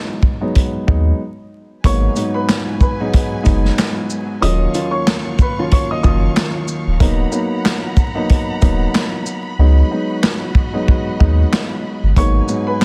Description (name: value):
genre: hip hop, boom-bap hip-hop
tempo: 93 BPM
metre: 4/4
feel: swing 58% on 16ths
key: G# dorian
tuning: A4 = 440 Hz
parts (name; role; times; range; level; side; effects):
- dark concert grand piano; accompaniment; 0.0-12.8 s; D#2 to E#4; -23 LUFS; equal; high-pass filter, low-pass filter
- vintage drum kit; drums; 0.2-12.8 s; handclaps, hi-hat, kick drum, shaker, snare drum; -18 LUFS; equal; none
- warm sub bass; bass; 0.9-12.4 s; D1 to D#2; -16 LUFS; equal; none
- warm studio string section; sustained chords; 1.8-12.8 s; F#3 to C#6; -33 LUFS; equal; high-pass filter, low-pass filter
- warm upright piano; melody; 1.9-7.0, 12.2-12.8 s; B4 to D#6; -26 LUFS; equal; high-pass filter, low-pass filter, digital delay
room: studio ambience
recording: dense, heavily limited modern master, vinyl crackle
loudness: -16 LUFS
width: mono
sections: 0.0-1.8 A section; 1.8-12.8 B section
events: break 1.2-1.8; hi-hats muted 9.6-12.2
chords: 0.0 C#9sus4 (rootless); 1.8 G#m7; 4.4 D#m9; 7.0 Bmaj7/D#; 9.6 C#9sus4 (rootless); 12.2 G#m9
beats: 0.55 1.19 | 1.84 2.48 3.13 3.77 | 4.42 5.07 5.71 6.36 | 7.00 7.65 8.29 8.94 | 9.58 10.23 10.87 11.52 | 12.16 12.81